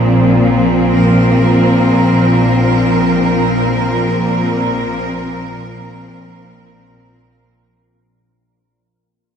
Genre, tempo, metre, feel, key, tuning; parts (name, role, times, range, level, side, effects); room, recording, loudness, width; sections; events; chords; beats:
dark ambient drone; free time; A4 = 440 Hz
bright symphonic cello section; sustained chords; 0.0-7.8 s; Bb2 to Bb4; -12 LUFS; equal
bowed-like drone; drone; 0.0-8.0 s; Bb1 to Bb2; -17 LUFS; equal; built-in reverb, phaser
wet cathedral reverb, RT60 5.4 s; in a vast, echoing space; -11 LUFS; side -8 dB against mid
0.0-7.8 A section
fade-out 0.8-7.8
0.0 Bb5
free time